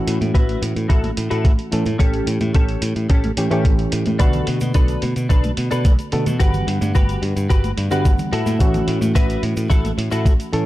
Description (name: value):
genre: nu-disco, nu disco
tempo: 109 BPM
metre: 4/4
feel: straight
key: unclear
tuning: A4 = 441 Hz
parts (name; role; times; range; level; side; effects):
- barky reed electric piano; accompaniment; 0.0-10.7 s; D3 to F#5; -24 LUFS; right 1 dB; overdrive, sidechain pumping, tape echo
- direct-recorded clean electric guitar; riff; 0.0-10.6 s; C#4 to B4; -26 LUFS; left 2 dB; analog chorus, low-pass filter, tape echo
- modern bright picked electric bass; bass; 0.1-10.6 s; G1 to B2; -22 LUFS; equal; none
- electronic hi-hat; drums; 0.1-10.6 s; none; -33 LUFS; right 2 dB; none
- congas and tube shaker; percussion; 0.2-10.5 s; none; -28 LUFS; right 1 dB; none
- electronic kick drum; drums; 0.3-10.4 s; none; -15 LUFS; equal; none
room: digital ambience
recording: dark, warm production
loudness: -16 LUFS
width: side -16 dB against mid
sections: 0.0-10.7 A section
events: none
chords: 0.0 F#m7/A; 2.0 A7; 4.2 Bm7; 6.4 Gmaj7; 8.3 F#m7/A